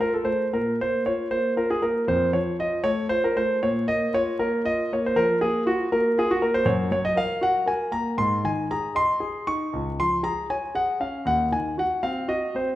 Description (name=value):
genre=classical, baroque-style suite movement for grand piano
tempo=78 BPM (dotted quarters)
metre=12/8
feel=rubato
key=Bb minor, Db major from 6.7 s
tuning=A4 = 440 Hz
part: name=warm concert grand piano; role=solo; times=0.0-12.8 s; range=Db2 to Db6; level=-22 LUFS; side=equal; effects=none
room=wet recital hall reverb, RT60 1.7 s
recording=minimal, uncompressed stereo recording, vinyl crackle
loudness=-22 LUFS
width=side -14 dB against mid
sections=0.0-12.8 A section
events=none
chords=0.0 F; 0.5 Bb5; 2.1 F; 3.6 Bb5; 6.7 Gb; 8.2 Ab; 9.7 Db; 11.3 Cdim/Eb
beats=| 0.50 1.29 2.07 2.85 | 3.61 4.38 5.15 5.91 | 6.66 7.42 8.18 8.95 | 9.73 10.49 11.26 12.03